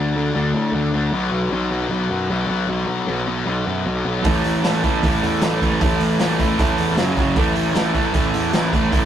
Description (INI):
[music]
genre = punk rock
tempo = 154 BPM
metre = 4/4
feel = straight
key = unclear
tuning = A4 = 440 Hz
[part]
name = sludgy distorted guitar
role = riff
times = 0.0-9.1 s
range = F#2 to D4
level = -21 LUFS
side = left 4 dB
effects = overdrive
[part]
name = fuzz picked electric bass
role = bass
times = 0.0-9.1 s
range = F#1 to A2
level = -23 LUFS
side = right 1 dB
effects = overdrive
[part]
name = distorted electric guitar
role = riff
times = 4.2-9.1 s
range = F#2 to A3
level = -22 LUFS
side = right 7 dB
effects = distortion
[part]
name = raw garage drum kit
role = drums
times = 4.2-9.0 s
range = hi-hat, kick drum, snare drum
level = -21 LUFS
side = right 1 dB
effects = none
[sound]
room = light reverb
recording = rough rehearsal-room recording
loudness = -17 LUFS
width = side -10 dB against mid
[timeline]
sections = 0.0-9.1 A section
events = none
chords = 0.0 D5; 1.1 B5; 4.3 A5; 7.0 F#5; 7.4 A5